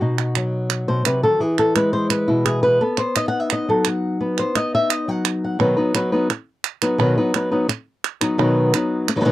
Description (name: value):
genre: flamenco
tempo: 172 BPM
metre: 4/4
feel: straight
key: B major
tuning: A4 = 439 Hz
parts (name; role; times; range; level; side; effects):
- flamenco guitar; melody; 0.0-9.3 s; B2 to F#5; -18 LUFS; left 1 dB; none
- palmas hand claps; percussion; 0.2-9.3 s; none; -23 LUFS; right 14 dB; none
room: light reverb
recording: dry, close 1970s-style studio recording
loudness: -17 LUFS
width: side -15 dB against mid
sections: 0.0-5.6 A section; 5.6-9.3 B section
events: nylon-string guitar solo 0.0-5.6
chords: 0.0 B; 1.4 E; 2.8 B